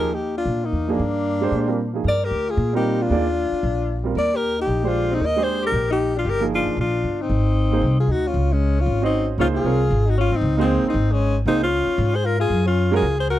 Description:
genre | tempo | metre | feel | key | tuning
jazz | 229 BPM | 4/4 | swing 59% on 8ths | Eb major, Db major from 8.3 s | A4 = 440 Hz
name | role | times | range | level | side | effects
clear alto saxophone | melody | 0.0-13.4 s | C4 to Eb5 | -23 LUFS | equal | none
clear alto saxophone | second line | 0.0-13.4 s | Ab3 to Bb4 | -28 LUFS | left 10 dB | none
warm baby grand piano | accompaniment | 0.0-13.0 s | F3 to Eb5 | -24 LUFS | right 6 dB | none
upright bass | bass | 0.0-13.4 s | G1 to Bb2 | -22 LUFS | equal | none
room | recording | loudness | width
small room ambience | dry, close 1970s-style studio recording | -18 LUFS | side -13 dB against mid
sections
0.0-8.3 A section; 8.3-13.4 B section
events
none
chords
0.0 Ebmaj9; 7.3 Ab; 8.3 Dbmaj9; 12.5 Gbmaj7sus2

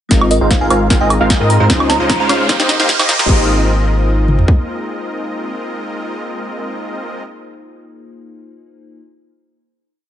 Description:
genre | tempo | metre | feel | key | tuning
future bass | 151 BPM | 4/4 | half-time | Ab major | A4 = 441 Hz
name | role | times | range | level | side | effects
glassy digital keys | accompaniment | 0.1-9.0 s | Ab3 to C5 | -23 LUFS | left 3 dB | chorus, sidechain pumping, tape echo
supersaw stab | riff | 0.1-7.2 s | Ab3 to F5 | -18 LUFS | equal | sidechain pumping, low-pass filter, tape echo
saturated sub bass | bass | 0.1-4.4 s | Ab1 to Ab2 | -16 LUFS | equal | sidechain pumping
trap drum kit | drums | 0.1-4.6 s | kick drum, toms | -14 LUFS | equal | overdrive
trap drum kit | drums | 0.1-3.4 s | crash cymbal, hi-hat, snare drum, woodblock | -17 LUFS | equal | overdrive
riser | sound effects | 1.3-3.3 s | none | -22 LUFS | right 3 dB | none
thumb-piano-like synth pluck | arpeggios | 0.2-3.5 s | F4 to G5 | -26 LUFS | left 2 dB | none
bell-like FM electric piano | melody | 0.3-2.4 s | Eb5 to Bb5 | -21 LUFS | right 6 dB | chorus, phaser, sidechain pumping, tape echo
room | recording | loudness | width
light reverb, digital ambience | high-pass filter, nothing above 10.9 kHz | -12 LUFS | side -10 dB against mid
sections
0.1-3.3 build; 3.3-6.5 final chord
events
build-up 0.1-3.3; drum fill 0.1-3.3; filter sweep on supersaw synth 0.1-3.3; filter sweep 0.1-3.3; riser 1.3-3.3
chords
0.1 Ab69; 1.7 Dbmaj9; 2.5 Cm7; 3.3 Ab69

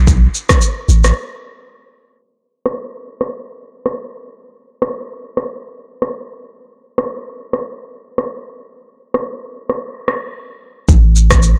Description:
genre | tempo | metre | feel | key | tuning
afrobeats | 111 BPM | 4/4 | swing 58% on 16ths | unclear | A4 = 440 Hz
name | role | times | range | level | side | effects
punchy sub bass | bass | 0.0-1.1, 10.9-11.5 s | A1 to B1 | -12 LUFS | equal | none
deep house drum kit | drums | 0.1-11.6 s | kick drum, rim click, shaker | -18 LUFS | equal | soft clipping on snare
room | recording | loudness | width
light reverb | blown-out, overdriven recording, overdrive, low-pass filter | -17 LUFS | mono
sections
0.0-2.2 A section; 2.2-10.9 B section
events
break 1.2-2.2, 10.3-10.9; filter sweep 2.2-10.9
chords
none

